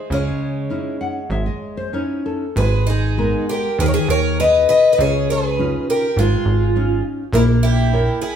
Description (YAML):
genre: fado-style ballad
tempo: 100 BPM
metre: 4/4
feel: rubato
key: G# harmonic minor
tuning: A4 = 442 Hz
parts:
  - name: picked twelve-string acoustic guitar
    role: melody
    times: 0.0-8.4 s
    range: G4 to D#5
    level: -20 LUFS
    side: left 2 dB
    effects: none
  - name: picked twelve-string acoustic guitar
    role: second line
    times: 0.0-8.4 s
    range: G#3 to B4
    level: -24 LUFS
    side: right 5 dB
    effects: none
  - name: nylon-string guitar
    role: accompaniment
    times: 0.1-8.4 s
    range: C#3 to F#5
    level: -23 LUFS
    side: left 2 dB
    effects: none
  - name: plucky analog bass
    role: bass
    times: 0.1-8.1 s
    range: G#1 to D#2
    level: -19 LUFS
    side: equal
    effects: none
room: wet large studio reverb, RT60 1.2 s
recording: band playing live in one room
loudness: -16 LUFS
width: side -8 dB against mid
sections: 0.0-2.6 A section; 2.6-8.4 B section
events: nylon-string guitar fill 0.7-2.6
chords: 0.1 C#madd9; 2.6 G#madd9; 5.0 C#add9; 7.3 A#dim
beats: | 0.10 0.70 1.30 1.93 | 2.56 3.18 3.79 4.39 | 4.99 5.59 6.17 6.76 | 7.34 7.92